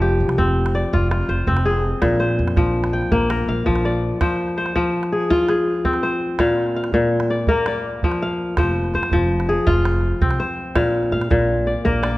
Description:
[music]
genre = west african traditional, West African string and xylophone music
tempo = 110 BPM (dotted quarters)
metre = 12/8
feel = straight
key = F dorian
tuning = A4 = 440 Hz
[part]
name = kora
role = arpeggios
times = 0.0-12.2 s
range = Bb2 to G5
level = -19 LUFS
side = left 1 dB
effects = none
[part]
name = upright bass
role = bass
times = 0.0-4.1, 8.6-12.2 s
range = F1 to Bb2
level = -22 LUFS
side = equal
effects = none
[part]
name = calabash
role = percussion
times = 0.3-12.1 s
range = none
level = -24 LUFS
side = right 2 dB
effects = none
[sound]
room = moderate recital hall reverb, RT60 1.5 s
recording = worn, warbling old tape, cassette tape, warbly pitch drift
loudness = -17 LUFS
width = side -18 dB against mid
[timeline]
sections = 0.0-4.2 A section; 4.2-12.2 B section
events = none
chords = 0.0 Fm; 2.0 Bb; 4.2 Fm; 6.4 Bb; 8.6 Fm; 10.8 Bb

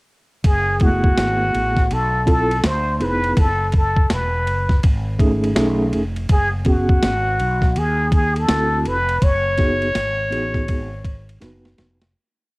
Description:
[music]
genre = hip hop, jazz-hop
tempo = 82 BPM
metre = 4/4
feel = swing 64% on 16ths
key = F# dorian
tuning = A4 = 440 Hz
[part]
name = mellow fretless electric bass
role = bass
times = 0.4-12.1 s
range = E1 to D#2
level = -23 LUFS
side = equal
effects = none
[part]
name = boom bap sampler-style drum kit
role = drums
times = 0.4-12.1 s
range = hi-hat, kick drum, ride cymbal, snare drum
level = -18 LUFS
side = equal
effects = cassette tape
[part]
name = trumpet with plunger mute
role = melody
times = 0.5-11.4 s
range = F#4 to C#5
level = -20 LUFS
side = equal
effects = cassette tape
[part]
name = mellow tine electric piano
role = accompaniment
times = 0.8-12.0 s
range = G#3 to B4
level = -22 LUFS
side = right 1 dB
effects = fast tremolo, cassette tape
[sound]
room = light reverb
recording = home recording on cassette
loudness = -16 LUFS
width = side -24 dB against mid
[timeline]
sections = 0.4-12.1 head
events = fade-out 9.2-12.1; drum fill 11.4-12.1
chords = 0.4 F#m11; 2.6 Dm9; 3.4 C#m9; 5.6 B13; 6.3 F#sus2; 8.5 D9; 9.2 C#9sus4/F#

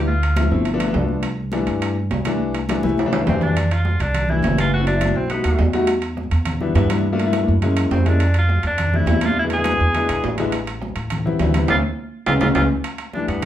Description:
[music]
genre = Afro-Cuban jazz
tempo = 207 BPM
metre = 4/4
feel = straight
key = C major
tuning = A4 = 440 Hz
[part]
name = warm grand piano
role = accompaniment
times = 0.0-13.5 s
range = E3 to F#4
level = -22 LUFS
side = left 3 dB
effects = none
[part]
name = upright bass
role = bass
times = 0.0-13.5 s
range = F#1 to A2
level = -21 LUFS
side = right 1 dB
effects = none
[part]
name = clear tenor saxophone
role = melody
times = 0.1-0.5, 3.3-5.7, 7.9-13.5 s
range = B3 to G#4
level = -23 LUFS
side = equal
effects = plate reverb
[part]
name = congas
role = percussion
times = 0.1-13.5 s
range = none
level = -26 LUFS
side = left 1 dB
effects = none
[part]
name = timbales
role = percussion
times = 0.2-13.5 s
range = none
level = -28 LUFS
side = right 4 dB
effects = none
[sound]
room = wet studio reverb, RT60 0.6 s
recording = heard from further back in the room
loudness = -17 LUFS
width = side -11 dB against mid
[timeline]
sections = 0.0-3.6 A section; 3.6-12.8 B section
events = drum fill 2.8-3.6, 12.4-12.8; band accent 11.7-12.8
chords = 0.1 Dm7; 0.7 G7; 1.2 C69; 3.6 Fmaj13; 4.7 F#m7b5; 5.3 B7b13; 5.9 Em7; 7.0 Gm7; 7.6 F#9; 8.2 F69; 9.4 E7; 10.5 Am9; 11.7 D7(no3); 12.3 Db7; 12.8 C69 (rootless)

